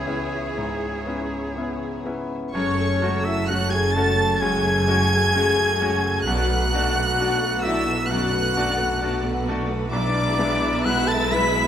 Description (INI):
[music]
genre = cinematic, emotional film score for orchestra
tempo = 65 BPM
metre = 4/4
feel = rubato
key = F# minor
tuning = A4 = 440 Hz
[part]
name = dark chamber violin section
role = melody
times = 0.0-11.7 s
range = G#5 to B6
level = -27 LUFS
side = right 1 dB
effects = none
[part]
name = clear oboe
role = second line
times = 0.0-11.7 s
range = G#4 to B5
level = -28 LUFS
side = right 1 dB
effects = none
[part]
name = warm chamber violin section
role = second line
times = 0.0-11.7 s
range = G#4 to F#5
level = -33 LUFS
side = right 1 dB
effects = none
[part]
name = bright grand piano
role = accompaniment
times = 0.0-11.7 s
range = B1 to F#4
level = -28 LUFS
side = left 2 dB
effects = none
[part]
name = warm symphonic viola section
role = accompaniment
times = 0.0-11.7 s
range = G#3 to A4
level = -32 LUFS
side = equal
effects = none
[part]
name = mellow French horn section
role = sustained chords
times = 0.0-11.7 s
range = E3 to B4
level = -27 LUFS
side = left 4 dB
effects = none
[part]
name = dark symphonic cello section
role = bass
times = 0.0-11.7 s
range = F#2 to G#4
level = -30 LUFS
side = right 2 dB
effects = none
[part]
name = rich symphonic double bass section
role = bass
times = 0.0-11.7 s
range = F#1 to C#2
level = -28 LUFS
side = right 2 dB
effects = none
[part]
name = small flute group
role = second line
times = 2.6-11.7 s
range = C#5 to B5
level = -31 LUFS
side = left 2 dB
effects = none
[sound]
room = moderate recital hall reverb, RT60 1.6 s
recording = none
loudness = -20 LUFS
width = side -9 dB against mid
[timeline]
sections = 0.0-2.5 A section; 2.5-11.7 B section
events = none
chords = 0.0 C#m7; 2.5 F#madd9; 6.3 Bm7; 9.9 E7/B